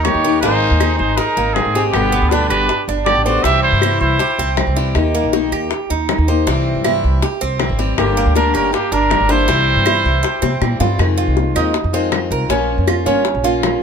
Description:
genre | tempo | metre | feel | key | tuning
latin, Cuban son and guajira | 159 BPM | 4/4 | straight | F minor | A4 = 444 Hz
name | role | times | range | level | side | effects
clear trumpet | melody | 0.0-4.5, 8.0-10.6 s | G4 to E5 | -18 LUFS | right 3 dB | none
picked old ladder-braced acoustic guitar | accompaniment | 0.0-13.8 s | B2 to Ab4 | -21 LUFS | left 6 dB | none
Cuban tres | arpeggios | 0.0-13.8 s | Bb3 to C5 | -21 LUFS | right 7 dB | none
upright bass | bass | 0.0-13.8 s | G1 to C3 | -19 LUFS | equal | none
bongos | percussion | 0.0-13.8 s | none | -23 LUFS | left 9 dB | none
claves | percussion | 0.0-13.8 s | none | -28 LUFS | right 7 dB | none
growling trumpet | second line | 0.1-4.5, 8.0-10.6 s | Bb3 to G4 | -24 LUFS | left 6 dB | none
room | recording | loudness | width
light reverb | none | -13 LUFS | side -6 dB against mid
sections
0.0-11.0 A section; 11.0-13.8 B section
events
drum fill 10.4-11.0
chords
0.4 Abadd9; 1.9 G; 3.4 C; 5.0 Eb; 6.5 C; 8.0 Gm; 9.5 C; 11.0 Fm7; 12.5 Bbm

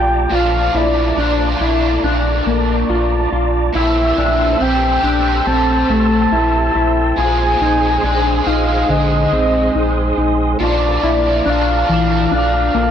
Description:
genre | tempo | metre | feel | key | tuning
dream pop | 70 BPM | 4/4 | straight | Bb lydian | A4 = 440 Hz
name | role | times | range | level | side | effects
soft octave-layered synth lead | melody | 0.0-12.9 s | D5 to A5 | -18 LUFS | equal | chorus, analog delay
raw garage guitar | accompaniment | 0.0-12.9 s | Bb2 to Ab4 | -22 LUFS | right 3 dB | overdrive, harmonic tremolo, ensemble chorus
mellow tonewheel organ | sustained chords | 0.0-12.9 s | Ab4 to E6 | -24 LUFS | right 1 dB | chorus vibrato, fast rotary speaker
mellow electric guitar | arpeggios | 0.0-12.9 s | D3 to F4 | -18 LUFS | left 2 dB | analog chorus, analog delay
sub bass with octave | bass | 0.0-12.9 s | Bb1 | -19 LUFS | equal | none
room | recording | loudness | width
little or no reverb | dry, gritty hardware recording, cassette tape | -13 LUFS | side -9 dB against mid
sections
0.0-12.9 A section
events
none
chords
0.0 Bbmaj7; 3.7 Am7/Bb; 7.2 Ab/Bb; 10.6 Bbmaj7

